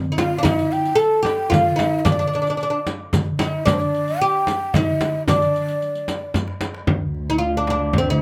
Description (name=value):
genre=Arabic maqam ensemble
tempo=112 BPM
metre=3/4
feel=straight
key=D maqam bayati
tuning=A4 = 438 Hz
part: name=oud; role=melody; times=0.1-8.2 s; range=C4 to A4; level=-23 LUFS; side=equal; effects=none
part: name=breathy mellow ney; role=second line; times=0.2-6.3 s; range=C5 to A5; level=-26 LUFS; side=equal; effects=none
part: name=darbuka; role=percussion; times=0.2-8.1 s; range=none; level=-28 LUFS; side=equal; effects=none
part: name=frame drum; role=percussion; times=0.2-8.1 s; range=none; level=-26 LUFS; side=equal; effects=none
part: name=riq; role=percussion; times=0.2-6.7 s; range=none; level=-32 LUFS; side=equal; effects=none
part: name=dark symphonic cello section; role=drone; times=6.9-8.2 s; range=D2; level=-27 LUFS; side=equal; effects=none
room=light reverb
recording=close, detailed microphones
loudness=-20 LUFS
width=mono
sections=0.0-6.9 A section; 6.9-8.2 B section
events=drum fill 6.3-6.9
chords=none